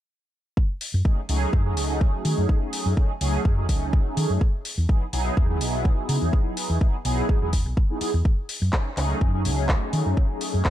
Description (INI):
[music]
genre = filtered disco house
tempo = 125 BPM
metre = 4/4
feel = swing 53% on 16ths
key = F# dorian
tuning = A4 = 440 Hz
[part]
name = electronic kick drum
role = drums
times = 0.6-10.7 s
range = none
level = -21 LUFS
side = equal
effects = none
[part]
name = house drum kit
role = drums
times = 0.8-10.7 s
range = handclaps, hi-hat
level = -31 LUFS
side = left 1 dB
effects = sidechain pumping on hats
[part]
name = hollow-body short-scale fingered electric bass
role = bass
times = 0.9-10.6 s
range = E1 to D#3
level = -24 LUFS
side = equal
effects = tube saturation, sidechain pumping, low-pass filter
[part]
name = mellow synth brass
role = accompaniment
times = 1.0-10.7 s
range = F#3 to G#4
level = -28 LUFS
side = right 1 dB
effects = chorus, phaser, sidechain pumping, low-pass filter
[sound]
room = digital ambience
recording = dark, warm production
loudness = -21 LUFS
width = side -12 dB against mid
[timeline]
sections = 0.6-10.7 A section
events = none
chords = 0.6 F#m69; 4.4 Emaj9; 8.3 F#m69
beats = | 0.57 1.05 1.53 2.01 | 2.49 2.97 3.45 3.93 | 4.41 4.89 5.37 5.85 | 6.33 6.81 7.29 7.77 | 8.25 8.73 9.21 9.69 | 10.17 10.65